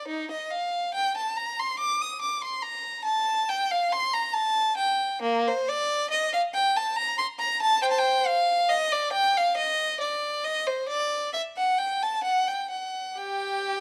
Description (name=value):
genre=classical, baroque-style suite movement for unaccompanied violin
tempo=69 BPM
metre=3/4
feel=rubato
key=Bb major, G minor from 5.2 s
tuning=A4 = 441 Hz
part: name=clear violin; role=solo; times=0.0-13.8 s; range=Bb3 to Eb6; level=-26 LUFS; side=equal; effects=none
room=light reverb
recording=close, detailed microphones, vinyl crackle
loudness=-26 LUFS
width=mono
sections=0.0-13.8 A section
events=none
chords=none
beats=| 0.09 0.94 1.79 | 2.64 3.49 4.34 | 5.23 6.11 6.97 | 7.84 8.71 9.57 | 10.44 11.33 12.24 | 13.19